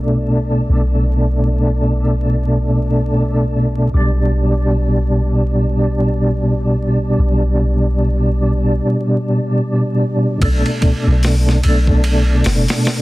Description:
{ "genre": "trip hop", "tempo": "74 BPM", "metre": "4/4", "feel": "swing 59% on 16ths", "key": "B minor", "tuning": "A4 = 440 Hz", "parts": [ { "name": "percussive tonewheel organ", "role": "accompaniment", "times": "0.0-13.0 s", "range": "B2 to D4", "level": "-15 LUFS", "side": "equal", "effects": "chorus vibrato, slow rotary speaker, tremolo, low-pass filter, tape echo" }, { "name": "soft 808-style bass", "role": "bass", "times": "0.0-12.7 s", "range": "F#1 to B1", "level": "-17 LUFS", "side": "equal", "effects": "none" }, { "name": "boom bap sampler-style drum kit", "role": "drums", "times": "10.4-13.0 s", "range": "hi-hat, kick drum, ride cymbal, snare drum", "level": "-19 LUFS", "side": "equal", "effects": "none" } ], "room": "digital ambience", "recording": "dense, heavily limited modern master, vinyl crackle", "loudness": "-13 LUFS", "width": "side -19 dB against mid", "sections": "0.0-10.4 A section; 10.4-13.0 B section", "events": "none", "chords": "0.0 Bm7; 3.9 G/B; 10.4 Bm7" }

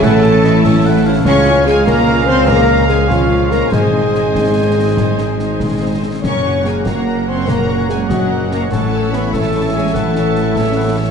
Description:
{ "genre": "cinematic, heroic adventure film score", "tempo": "97 BPM (dotted quarters)", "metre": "12/8", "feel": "straight", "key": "unclear", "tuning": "A4 = 441 Hz", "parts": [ { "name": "clear symphonic violin section", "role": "melody", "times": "0.0-10.9 s", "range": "F5 to Db6", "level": "-25 LUFS", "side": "left 2 dB", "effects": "none" }, { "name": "dark clarinet", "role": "second line", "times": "0.0-11.0 s", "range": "F4 to Db5", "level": "-25 LUFS", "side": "equal", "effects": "none" }, { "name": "rich studio violin section", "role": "second line", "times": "0.0-11.1 s", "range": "C5 to E6", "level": "-30 LUFS", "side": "left 2 dB", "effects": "none" }, { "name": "warm oboe", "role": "second line", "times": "0.0-11.1 s", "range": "C5 to Gb5", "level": "-26 LUFS", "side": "right 2 dB", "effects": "none" }, { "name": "clear symphonic viola section", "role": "accompaniment", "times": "0.0-11.1 s", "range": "Bb3 to Db5", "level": "-25 LUFS", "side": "equal", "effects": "none" }, { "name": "mellow French horn section", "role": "sustained chords", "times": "0.0-10.9 s", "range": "F4 to Db5", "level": "-19 LUFS", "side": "left 4 dB", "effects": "none" }, { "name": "warm trombone section", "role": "sustained chords", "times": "0.0-11.1 s", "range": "Ab2 to Db4", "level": "-26 LUFS", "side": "right 3 dB", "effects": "none" }, { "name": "concert harp", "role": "arpeggios", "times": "0.0-11.1 s", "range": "Gb2 to Bb4", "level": "-22 LUFS", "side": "left 9 dB", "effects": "none" }, { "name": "clear trumpet section", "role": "stabs", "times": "0.0-11.1 s", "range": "E4 to Gb5", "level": "-24 LUFS", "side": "right 2 dB", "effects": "none" }, { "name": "mellow tuba", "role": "bass", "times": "0.0-11.1 s", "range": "Gb1 to Db2", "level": "-21 LUFS", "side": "right 3 dB", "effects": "none" }, { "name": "rich symphonic cello section", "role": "bass", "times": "0.0-10.9 s", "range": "F3 to Db4", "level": "-20 LUFS", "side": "right 3 dB", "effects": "none" }, { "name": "rich symphonic double bass section", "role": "bass", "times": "0.0-11.1 s", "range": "Gb1 to Db2", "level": "-20 LUFS", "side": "right 4 dB", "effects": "none" }, { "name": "concert snare drum, concert bass drum and clash cymbals", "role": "drums", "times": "0.0-11.1 s", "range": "none", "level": "-22 LUFS", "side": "left 1 dB", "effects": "none" } ], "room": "moderate scoring stage reverb, RT60 1.5 s", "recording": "dark, warm production, nothing above 11.0 kHz", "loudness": "-11 LUFS", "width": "side -6 dB against mid", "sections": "0.0-11.1 A section", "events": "none", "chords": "0.0 A; 1.2 Db; 3.7 Ab; 6.2 Gb; 8.7 A" }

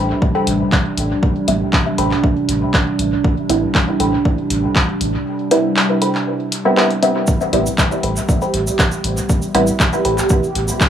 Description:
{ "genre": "dub techno", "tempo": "119 BPM", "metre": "4/4", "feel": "straight", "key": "A minor", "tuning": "A4 = 435 Hz", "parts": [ { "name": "warbly tape-like pad", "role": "sustained chords", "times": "0.0-10.9 s", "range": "C3 to D4", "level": "-21 LUFS", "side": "right 2 dB", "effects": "chorus, built-in reverb, sidechain pumping" }, { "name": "filtered dub chord stab", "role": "riff", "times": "0.0-10.2 s", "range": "A4 to B5", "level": "-25 LUFS", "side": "left 2 dB", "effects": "phaser, sidechain pumping, dub echo" }, { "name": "round analog bass", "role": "bass", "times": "0.0-10.7 s", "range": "A1", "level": "-21 LUFS", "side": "equal", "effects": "sidechain pumping" }, { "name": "electronic kick drum", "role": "drums", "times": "0.2-10.9 s", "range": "none", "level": "-16 LUFS", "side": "equal", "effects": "none" }, { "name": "punchy analog drum machine", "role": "drums", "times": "0.5-10.9 s", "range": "handclaps, hi-hat", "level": "-20 LUFS", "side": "equal", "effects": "dub echo" }, { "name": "filtered dub chord stab", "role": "stabs", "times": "1.5-9.7 s", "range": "G3 to E4", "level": "-19 LUFS", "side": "equal", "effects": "chorus, phaser, sidechain pumping, dub echo" }, { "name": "tube shaker", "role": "percussion", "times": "7.3-10.9 s", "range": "none", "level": "-28 LUFS", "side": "right 2 dB", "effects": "none" }, { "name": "bubbling stepped-filter texture", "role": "texture", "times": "8.0-10.9 s", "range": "G4", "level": "-23 LUFS", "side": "right 4 dB", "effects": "chorus, built-in reverb, sidechain pumping" } ], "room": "light reverb, digital ambience", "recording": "dry, gritty hardware recording, small room ambience", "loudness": "-14 LUFS", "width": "side -9 dB against mid", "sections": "0.0-10.9 A section", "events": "filter sweep on synth stab 0.0-10.9", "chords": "0.0 Am9" }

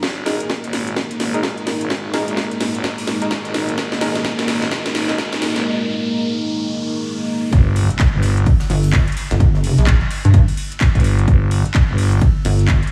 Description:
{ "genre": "bass house", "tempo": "128 BPM", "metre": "4/4", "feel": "swing 61% on 16ths", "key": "G phrygian", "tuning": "A4 = 440 Hz", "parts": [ { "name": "dark analog pad", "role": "sustained chords", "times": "0.0-12.9 s", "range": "G3 to Bb4", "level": "-26 LUFS", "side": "equal", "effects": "chorus, sidechain pumping" }, { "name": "growling FM bass", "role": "bass", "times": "0.0-12.2 s", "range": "G1 to Bb1", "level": "-22 LUFS", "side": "equal", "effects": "sidechain pumping, high-pass filter" }, { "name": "electronic kick drum", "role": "drums", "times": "0.0-12.8 s", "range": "none", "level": "-19 LUFS", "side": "equal", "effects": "overdrive, high-pass filter on kick, high-pass filter on room" }, { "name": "house drum kit", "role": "drums", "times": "0.0-12.9 s", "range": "handclaps, hi-hat, snare drum", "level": "-26 LUFS", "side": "equal", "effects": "high-pass filter on snare, high-pass filter on hats, high-pass filter on room" }, { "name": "riser and impact", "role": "sound effects", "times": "1.6-9.4 s", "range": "none", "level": "-31 LUFS", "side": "equal", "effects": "none" }, { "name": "band-passed chord stab", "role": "stabs", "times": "0.3-5.1 s", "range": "Eb4 to Bb4", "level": "-30 LUFS", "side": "equal", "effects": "none" }, { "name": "gated 80s drum kit", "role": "drums", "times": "7.5-12.9 s", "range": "hi-hat, ride cymbal, snare drum", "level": "-39 LUFS", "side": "equal", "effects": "none" }, { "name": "pulsing pluck wobble bass", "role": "bass", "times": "8.7-12.8 s", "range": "G1 to G2", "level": "-16 LUFS", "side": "equal", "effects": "chorus, sidechain pumping" } ], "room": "moderate lush hall reverb, RT60 1.9 s", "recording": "dreamy mix soaked in reverb", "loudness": "-18 LUFS", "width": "mono", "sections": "0.0-7.5 A section; 7.5-12.9 B section", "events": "build-up 0.0-7.5; drum fill 0.0-5.7; riser 1.6-7.5; drop 7.5-12.9; impact 7.5-9.4", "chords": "0.0 Absus2; 7.5 Gm7" }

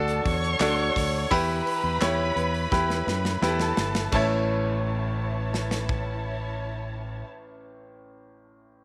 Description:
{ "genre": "piano-driven pop", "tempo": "85 BPM", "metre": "4/4", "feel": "straight", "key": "A mixolydian", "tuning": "A4 = 441 Hz", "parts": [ { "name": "warm studio violin section", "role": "second line", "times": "0.0-7.2 s", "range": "E4 to C#6", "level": "-33 LUFS", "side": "equal", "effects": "none" }, { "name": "clear concert grand piano", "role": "accompaniment", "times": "0.0-8.8 s", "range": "A1 to C#5", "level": "-30 LUFS", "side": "equal", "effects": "none" }, { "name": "fingered electric bass", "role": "bass", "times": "0.0-7.2 s", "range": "G1 to F#2", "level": "-32 LUFS", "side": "equal", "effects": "none" }, { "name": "modern studio drum kit", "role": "drums", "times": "0.1-6.1 s", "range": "crash cymbal, handclaps, hi-hat, kick drum, snare drum", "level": "-33 LUFS", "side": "equal", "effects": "none" } ], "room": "moderate echo chamber reverb, RT60 2.3 s", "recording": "none", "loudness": "-26 LUFS", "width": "mono", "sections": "0.0-4.1 A section; 4.1-7.0 B section", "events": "drum fill 2.7-4.1", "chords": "0.0 D; 1.3 Em; 4.1 A" }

